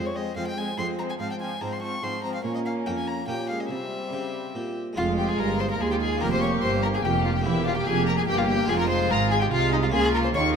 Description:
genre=classical, baroque-style concerto movement with solo episodes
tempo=145 BPM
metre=3/4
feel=straight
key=F minor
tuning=A4 = 439 Hz
part: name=rich chamber violin section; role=melody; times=0.0-10.5 s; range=G4 to Db6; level=-31 LUFS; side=left 7 dB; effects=none
part: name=rich violin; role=melody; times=0.0-10.4 s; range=Eb4 to Db6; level=-30 LUFS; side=left 2 dB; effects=none
part: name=rich chamber violin section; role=second line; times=0.0-10.6 s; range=C4 to G4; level=-32 LUFS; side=left 3 dB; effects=none
part: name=dark chamber viola section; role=accompaniment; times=0.0-10.6 s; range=F3 to Bb3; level=-32 LUFS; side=right 2 dB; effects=none
part: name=harpsichord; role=accompaniment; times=0.0-10.6 s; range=Eb2 to C5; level=-32 LUFS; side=equal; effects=none
part: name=dark chamber cello section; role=bass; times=0.0-10.6 s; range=Eb2 to Eb3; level=-30 LUFS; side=right 4 dB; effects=none
part: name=rich chamber double bass section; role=bass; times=5.0-10.6 s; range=E1 to Eb2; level=-28 LUFS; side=right 4 dB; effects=none
room=moderate concert hall reverb, RT60 1.9 s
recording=none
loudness=-23 LUFS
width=side -6 dB against mid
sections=0.0-5.0 A section; 5.0-10.6 B section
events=none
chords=0.0 Fm; 1.2 Fm/Ab; 2.4 Bbm; 3.3 Gdim/Bb; 3.7 C; 5.0 Fm; 6.2 Gm7b5/F; 7.5 C7/E; 8.7 Fm; 9.9 Bbm/Db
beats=0.37 0.78 | 1.20 1.61 2.03 | 2.44 2.86 3.28 | 3.71 4.13 4.55 | 4.97 5.39 5.81 | 6.22 6.63 7.05 | 7.46 7.87 8.28 | 8.69 9.11 9.52 | 9.93 10.35

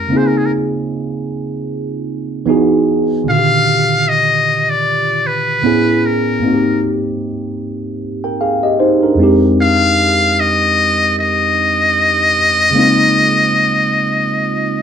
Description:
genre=R&B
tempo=76 BPM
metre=4/4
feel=swing 58% on 16ths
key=unclear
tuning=A4 = 440 Hz
part: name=trumpet with metal mute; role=melody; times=0.0-14.8 s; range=Ab4 to F5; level=-13 LUFS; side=left 2 dB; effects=none
part: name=tine electric piano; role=accompaniment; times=0.0-14.8 s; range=F2 to G5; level=-15 LUFS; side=right 1 dB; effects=phaser
room=moderate studio reverb, RT60 0.8 s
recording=band playing live in one room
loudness=-12 LUFS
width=side -8 dB against mid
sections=0.0-14.8 A section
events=none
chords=0.1 Dbmaj13; 2.5 Emaj9; 3.3 Ebmaj9; 5.6 Amaj9; 6.4 Abmaj9; 9.2 Fm7; 12.7 Dbmaj13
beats=| 0.11 0.90 1.69 2.48 | 3.27 4.05 4.84 5.63 | 6.42 7.21 8.00 8.79 | 9.58 10.37 11.16 11.95 | 12.74 13.53 14.32

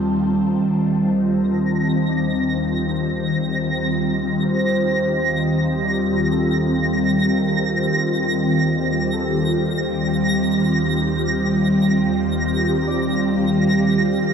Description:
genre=ambient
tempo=64 BPM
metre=3/4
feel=straight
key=Eb lydian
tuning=A4 = 440 Hz
part: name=ethereal airy pad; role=sustained chords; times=0.0-14.3 s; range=Eb2 to A5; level=-18 LUFS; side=equal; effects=ensemble chorus, built-in reverb, phaser
part: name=concert harp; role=arpeggios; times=0.0-14.3 s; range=A3 to Eb5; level=-32 LUFS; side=left 2 dB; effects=tape echo
part: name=twinkling granular texture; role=texture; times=1.6-14.3 s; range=Bb6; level=-26 LUFS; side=right 2 dB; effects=built-in reverb
room=wet concert hall reverb, RT60 2.5 s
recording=cassette tape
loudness=-17 LUFS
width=side -7 dB against mid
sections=0.0-1.2 A section; 1.2-14.3 B section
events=fade-in on harp 1.2-14.3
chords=0.0 Eb; 1.2 Ebmaj7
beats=0.22 | 1.16 2.09 3.03 | 3.97 4.91 5.84 | 6.78 7.72 8.66 | 9.59 10.53 11.47 | 12.41 13.34 14.28

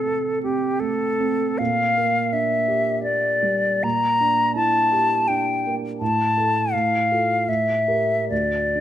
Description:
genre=classical, romantic duo for flute and grand piano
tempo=68-85 BPM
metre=3/4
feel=rubato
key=unclear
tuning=A4 = 440 Hz
part: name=silver concert flute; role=melody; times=0.0-8.8 s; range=G4 to Bb5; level=-20 LUFS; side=left 2 dB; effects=none
part: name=dark baby grand piano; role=accompaniment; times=0.0-8.8 s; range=D2 to Bb4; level=-25 LUFS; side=right 4 dB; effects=none
room=moderate recital hall reverb, RT60 1.4 s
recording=close, detailed microphones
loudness=-18 LUFS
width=side -11 dB against mid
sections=0.0-8.8 A section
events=none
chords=0.0 Am/C; 1.6 Gm/Bb; 3.8 Em7b5/Bb; 6.0 A5; 6.7 F/A; 7.5 A5; 8.3 N.C.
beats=0.08 0.81 | 1.59 2.33 3.04 | 3.84 4.57 5.29 | 6.01 6.73 7.47 | 8.30

